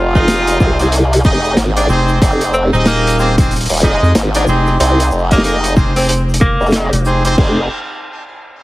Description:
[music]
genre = glitch hop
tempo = 93 BPM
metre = 4/4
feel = swing 61% on 16ths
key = F minor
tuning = A4 = 440 Hz
[part]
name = clear tenor saxophone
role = melody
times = 0.0-7.1 s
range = Ab3 to F4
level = -19 LUFS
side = equal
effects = digital delay
[part]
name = formant-sweep wobble bass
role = bass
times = 0.0-7.7 s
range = Eb1 to C2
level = -14 LUFS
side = equal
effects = chorus, overdrive
[part]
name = brilliant horn section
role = stabs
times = 0.2-7.6 s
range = C4 to Eb5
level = -17 LUFS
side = equal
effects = vintage 12-bit sampler grit, sidechain pumping, digital delay
[part]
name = crunchy breakbeat drum kit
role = drums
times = 0.2-7.5 s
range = crash cymbal, hi-hat, rim click, shaker, snare drum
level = -20 LUFS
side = equal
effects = none
[part]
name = electronic kick drum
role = drums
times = 0.2-7.5 s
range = none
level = -14 LUFS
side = equal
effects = none
[part]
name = rubbery square bass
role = bass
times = 1.9-7.4 s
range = Eb1 to F2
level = -15 LUFS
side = equal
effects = none
[sound]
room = light reverb, studio ambience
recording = heavily compressed radio sound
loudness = -10 LUFS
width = side -18 dB against mid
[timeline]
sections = 0.0-7.4 A section; 7.4-8.6 B section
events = drop 0.0-7.4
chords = 0.0 Fm9

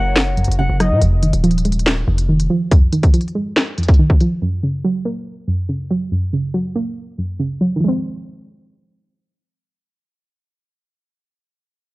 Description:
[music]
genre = hip hop, drill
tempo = 141 BPM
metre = 4/4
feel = half-time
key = F phrygian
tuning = A4 = 440 Hz
[part]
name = nylon-string guitar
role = melody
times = 0.0-0.8 s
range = Gb5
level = -24 LUFS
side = left 2 dB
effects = tape echo
[part]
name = soft round pluck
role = accompaniment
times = 0.0-10.9 s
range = F2 to C4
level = -18 LUFS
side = right 1 dB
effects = chorus
[part]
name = dark studio string section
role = sustained chords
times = 0.0-1.0 s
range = Gb3 to Db5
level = -32 LUFS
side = left 1 dB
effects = none
[part]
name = distorted 808-style bass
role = bass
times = 0.0-2.5 s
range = Eb1 to Bb2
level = -18 LUFS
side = equal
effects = distortion
[part]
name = drill drum kit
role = drums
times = 0.2-4.3 s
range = handclaps, hi-hat, kick drum, rim click, snare drum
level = -14 LUFS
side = equal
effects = none
[part]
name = warm velvety synth lead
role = second line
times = 0.8-1.0 s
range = Eb5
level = -23 LUFS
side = left 2 dB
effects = chorus, tremolo, tape echo
[sound]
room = little or no reverb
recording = worn, warbling old tape, cassette tape, warbly pitch drift, low-pass filter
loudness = -15 LUFS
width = side -21 dB against mid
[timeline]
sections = 0.0-1.0 A section; 1.0-7.8 B section; 7.8-11.2 C section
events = filter sweep 1.0-7.8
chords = 0.0 Gb; 1.0 Fm7; 4.4 Gb; 7.8 Fm7

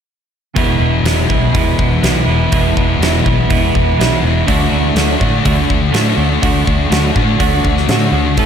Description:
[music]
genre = rock, shoegaze and dream pop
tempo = 123 BPM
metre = 4/4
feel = straight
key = unclear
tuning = A4 = 440 Hz
[part]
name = overdriven semi-hollow guitar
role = riff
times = 0.5-8.5 s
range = E2 to A4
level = -17 LUFS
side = right 6 dB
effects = reverse reverb
[part]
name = thick fuzz guitar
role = riff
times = 0.6-8.5 s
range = E2 to D4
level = -17 LUFS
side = left 8 dB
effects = distortion, ensemble chorus
[part]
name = vintage muted fingered electric bass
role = bass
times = 0.6-8.5 s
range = E1 to A2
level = -17 LUFS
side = equal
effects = none
[part]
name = huge arena drum kit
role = drums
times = 0.6-8.5 s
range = hi-hat, kick drum, snare drum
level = -17 LUFS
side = equal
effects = none
[sound]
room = moderate lush hall reverb, RT60 2.7 s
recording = dreamy mix soaked in reverb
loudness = -11 LUFS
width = side -8 dB against mid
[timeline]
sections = 0.6-8.5 A section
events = none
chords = 0.6 E; 4.5 D

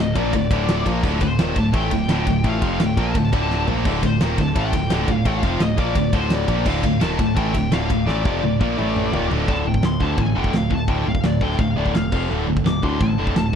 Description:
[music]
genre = heavy metal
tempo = 170 BPM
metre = 4/4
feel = straight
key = D minor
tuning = A4 = 437 Hz
[part]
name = high-gain lead guitar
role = melody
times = 0.0-13.5 s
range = C5 to D6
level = -28 LUFS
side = left 7 dB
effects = distortion, slapback echo
[part]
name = clear studio string section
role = sustained chords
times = 0.0-9.5 s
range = A3 to E5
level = -35 LUFS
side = equal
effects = none
[part]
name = heavy high-gain guitar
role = riff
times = 0.0-9.5 s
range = D2 to Bb3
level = -27 LUFS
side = equal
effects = distortion
[part]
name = high-gain distorted guitar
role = riff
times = 0.0-13.5 s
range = D2 to Bb3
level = -24 LUFS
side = right 10 dB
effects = distortion
[part]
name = tight distorted guitar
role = riff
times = 0.0-13.5 s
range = D2 to Bb3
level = -25 LUFS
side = left 13 dB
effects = distortion
[part]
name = modern bright picked electric bass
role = bass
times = 0.0-13.6 s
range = D1 to D2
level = -25 LUFS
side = equal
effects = none
[part]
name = big rock drum kit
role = drums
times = 0.2-13.6 s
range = china cymbal, crash cymbal, kick drum, ride cymbal, snare drum, toms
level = -24 LUFS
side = equal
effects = none
[sound]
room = little or no reverb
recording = dry, close 1970s-style studio recording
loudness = -17 LUFS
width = side -8 dB against mid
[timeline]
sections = 0.0-9.5 A section; 9.5-13.6 B section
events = drum fill 3.5-3.9, 8.1-9.5; lead electric guitar solo 9.5-13.6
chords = 0.0 Dm; 8.8 A5; 9.1 Dm; 12.1 F5; 12.3 D5

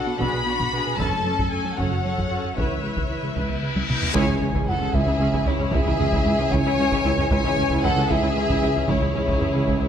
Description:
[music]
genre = cinematic, hybrid orchestral and electronic film score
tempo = 76 BPM (dotted quarters)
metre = 6/8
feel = straight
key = C# minor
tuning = A4 = 437 Hz
[part]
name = warm symphonic violin section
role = melody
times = 0.0-9.9 s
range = C#5 to B5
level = -29 LUFS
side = left 4 dB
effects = none
[part]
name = warm symphonic violin section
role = second line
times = 0.0-9.9 s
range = E4 to E5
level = -28 LUFS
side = left 3 dB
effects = none
[part]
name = rich symphonic viola section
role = accompaniment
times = 0.0-9.9 s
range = C#4 to B4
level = -30 LUFS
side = right 1 dB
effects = none
[part]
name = rich symphonic cello section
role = bass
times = 0.0-9.9 s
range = C#2 to B2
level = -30 LUFS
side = right 2 dB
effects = none
[part]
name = rich symphonic double bass section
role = bass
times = 0.0-9.7 s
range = F#1 to C#2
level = -31 LUFS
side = right 3 dB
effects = none
[part]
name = soft round pluck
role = arpeggios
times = 0.1-9.9 s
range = C#3 to B4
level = -31 LUFS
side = left 4 dB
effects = chorus
[part]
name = round analog bass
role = riff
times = 0.1-9.9 s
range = C#2 to B3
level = -30 LUFS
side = right 2 dB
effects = none
[part]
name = taiko ensemble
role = drums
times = 0.2-9.9 s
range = none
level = -29 LUFS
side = equal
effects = none
[part]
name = reverse cymbal and impact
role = sound effects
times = 3.3-5.7 s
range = none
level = -31 LUFS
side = left 2 dB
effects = none
[part]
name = pure breathy sine lead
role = melody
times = 4.2-9.9 s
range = C#5 to G#5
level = -28 LUFS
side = right 2 dB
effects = chorus
[part]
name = dark French horn section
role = sustained chords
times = 4.2-9.9 s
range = E3 to C#4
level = -29 LUFS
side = left 1 dB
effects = none
[part]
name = dark tuba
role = bass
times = 4.2-9.7 s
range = C#2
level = -31 LUFS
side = right 3 dB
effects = none
[part]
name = swelling detuned saw bass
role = bass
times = 4.2-9.9 s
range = C#2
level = -31 LUFS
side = equal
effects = none
[sound]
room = wet concert hall reverb, RT60 1.7 s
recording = none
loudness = -20 LUFS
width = side -8 dB against mid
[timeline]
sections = 0.0-4.2 A section; 4.2-9.9 A section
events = reverse cymbal 3.3-4.2; drum fill 3.8-4.2; band accent 4.2-4.7; impact 4.2-5.7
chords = 0.0 Bm; 1.0 F#m; 2.6 C#m7; 4.2 C#m

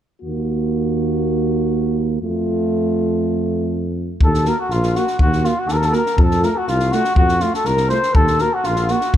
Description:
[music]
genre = balkan folk, Balkan brass band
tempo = 122 BPM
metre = 2/4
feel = straight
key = Eb dorian sharp4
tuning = A4 = 440 Hz
[part]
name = dark euphonium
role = accompaniment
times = 0.2-9.0 s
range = A3 to Bb3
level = -23 LUFS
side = right 6 dB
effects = none
[part]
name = mellow French horn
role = accompaniment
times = 0.2-9.0 s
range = F4 to Gb4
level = -27 LUFS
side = left 7 dB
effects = none
[part]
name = mellow tuba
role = bass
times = 0.2-9.2 s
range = Bb1 to F2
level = -21 LUFS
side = equal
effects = none
[part]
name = cornet with cup mute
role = melody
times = 4.2-9.1 s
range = F4 to C5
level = -20 LUFS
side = equal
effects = tape echo
[part]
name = compact cocktail drum kit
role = percussion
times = 4.2-9.2 s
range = kick drum, snare drum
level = -19 LUFS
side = equal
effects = none
[part]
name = clear flugelhorn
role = second line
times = 4.3-9.1 s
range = F4 to C5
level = -24 LUFS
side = left 5 dB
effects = none
[sound]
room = light reverb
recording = none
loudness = -16 LUFS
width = side -11 dB against mid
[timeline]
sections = 0.2-4.2 A section; 4.2-9.2 B section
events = none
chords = 0.2 Ebm; 2.2 F; 4.2 Ebm; 6.2 F; 8.2 Ebm

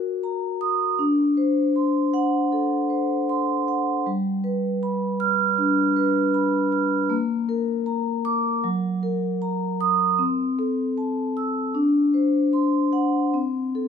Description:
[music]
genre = classical, contemporary piece for solo vibraphone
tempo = 78 BPM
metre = 4/4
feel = rubato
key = unclear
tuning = A4 = 436 Hz
[part]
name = vibraphone with soft mallets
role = solo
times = 0.0-13.9 s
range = F#3 to F6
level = -20 LUFS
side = equal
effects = none
[sound]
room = light reverb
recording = close, detailed microphones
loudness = -20 LUFS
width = side -7 dB against mid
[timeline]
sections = 0.0-13.9 A section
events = none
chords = 0.0 F#6; 1.0 D7; 4.1 G7; 7.1 Bb; 8.6 F#6; 10.2 C6; 11.7 D7; 13.3 C5

